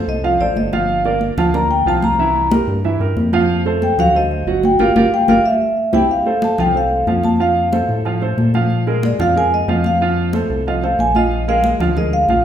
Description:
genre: Afro-Cuban jazz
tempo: 184 BPM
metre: 4/4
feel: straight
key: unclear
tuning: A4 = 440 Hz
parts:
  - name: warm grand piano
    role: accompaniment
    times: 0.0-12.4 s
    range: E3 to Gb5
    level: -19 LUFS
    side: right 4 dB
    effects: none
  - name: vibraphone with medium mallets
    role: melody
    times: 0.1-12.4 s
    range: D5 to Bb5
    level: -17 LUFS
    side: left 1 dB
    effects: none
  - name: round analog bass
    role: bass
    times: 0.1-12.4 s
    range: G1 to Bb2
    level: -21 LUFS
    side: left 1 dB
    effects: none
  - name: congas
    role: percussion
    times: 0.1-12.4 s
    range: none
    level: -21 LUFS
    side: left 1 dB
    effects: none
room: wet recital hall reverb, RT60 1.3 s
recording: recorded in a church or concert hall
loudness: -14 LUFS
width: side -9 dB against mid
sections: 0.0-6.1 A section; 6.1-12.4 A section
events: vibraphone solo 0.0-12.4; band accent 4.8-6.1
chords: 0.0 F; 0.9 Gm7; 2.2 C7; 3.5 F; 4.1 D7b9; 4.8 Gm7; 5.4 C; 6.1 F; 8.7 Bb5; 10.0 F; 11.3 Bb7

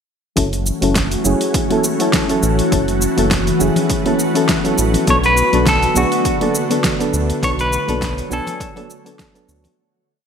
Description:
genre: sunset chillout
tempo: 102 BPM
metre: 4/4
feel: swing 55% on 16ths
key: F# minor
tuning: A4 = 438 Hz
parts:
  - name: soft electric-piano-like synth keys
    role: accompaniment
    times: 0.4-9.8 s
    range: F#3 to G#5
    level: -20 LUFS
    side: moving between left 5 dB and right 2 dB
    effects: chorus, auto-pan, low-pass filter, tape echo
  - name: ethereal airy pad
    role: sustained chords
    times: 0.6-9.8 s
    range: D3 to C#5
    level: -21 LUFS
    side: equal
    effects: ensemble chorus, built-in reverb
  - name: round analog bass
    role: bass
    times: 0.4-9.7 s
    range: F#1 to D2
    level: -20 LUFS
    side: equal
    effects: none
  - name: deep house drum kit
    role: drums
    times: 0.4-9.8 s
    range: hi-hat, shaker, snare drum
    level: -22 LUFS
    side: equal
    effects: overdrive, studio reverb
  - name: electronic kick drum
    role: drums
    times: 0.4-9.3 s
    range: none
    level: -23 LUFS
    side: equal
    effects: overdrive, studio reverb
  - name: congas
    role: percussion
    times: 1.7-9.8 s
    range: none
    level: -26 LUFS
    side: left 3 dB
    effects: none
  - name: semi-hollow electric guitar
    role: melody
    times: 5.1-9.2 s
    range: F#4 to C#5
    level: -18 LUFS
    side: left 1 dB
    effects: spring reverb, tape echo
room: wet plate reverb, RT60 1.5 s, digital ambience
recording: dreamy mix soaked in reverb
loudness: -14 LUFS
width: side -7 dB against mid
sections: 0.4-9.8 groove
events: filter sweep on synth keys 0.4-9.8; fade-out 6.6-9.8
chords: 0.4 F#m7; 5.1 Bm7

